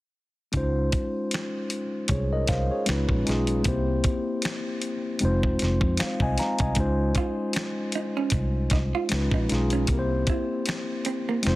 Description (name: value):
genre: R&B, neo-soul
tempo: 77 BPM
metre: 4/4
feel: swing 56% on 16ths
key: Db major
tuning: A4 = 440 Hz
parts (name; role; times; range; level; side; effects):
- mellow tine electric piano; accompaniment; 0.5-11.6 s; Ab3 to Bb5; -27 LUFS; left 1 dB; none
- vintage muted fingered electric bass; bass; 0.5-11.6 s; F1 to F2; -26 LUFS; equal; none
- dusty soul sampler-style drum kit; drums; 0.5-11.6 s; finger snaps, hi-hat, kick drum, snare drum; -28 LUFS; equal; none
- vintage hollow-body jazz guitar; second line; 7.2-11.5 s; Bb3 to F4; -32 LUFS; right 6 dB; none
room: little or no reverb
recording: dense, heavily limited modern master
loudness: -23 LUFS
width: side -18 dB against mid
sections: 0.5-11.6 A section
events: none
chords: 0.5 Dbmaj9; 2.9 Db9; 3.7 C7; 5.2 Fm7; 6.8 Dbmaj9; 9.1 Db9; 9.9 C7